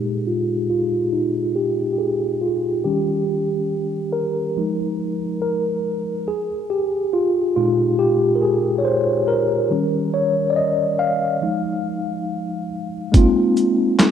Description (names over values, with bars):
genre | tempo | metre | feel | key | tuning
lo-fi hip hop | 70 BPM | 4/4 | swing 59% on 16ths | unclear | A4 = 441 Hz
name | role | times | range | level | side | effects
mellow tine electric piano | accompaniment | 0.0-14.1 s | Bb2 to F5 | -18 LUFS | equal | medium stereo tremolo, cassette tape, low-pass filter
dusty soul sampler-style drum kit | drums | 13.1-14.1 s | handclaps, hi-hat, kick drum, shaker, snare drum | -13 LUFS | equal | overdrive
room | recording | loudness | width
moderate lush hall reverb, RT60 2.5 s | rough home demo mix | -18 LUFS | side -9 dB against mid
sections
0.0-13.1 A section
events
tine electric piano solo 0.0-13.1; filter sweep on tine electric piano 0.0-13.1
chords
0.0 Bb7sus4; 2.9 Eb7; 4.6 Fm7; 6.3 Bb7sus4; 9.7 Eb7; 11.4 Fm7; 13.1 Bb7sus4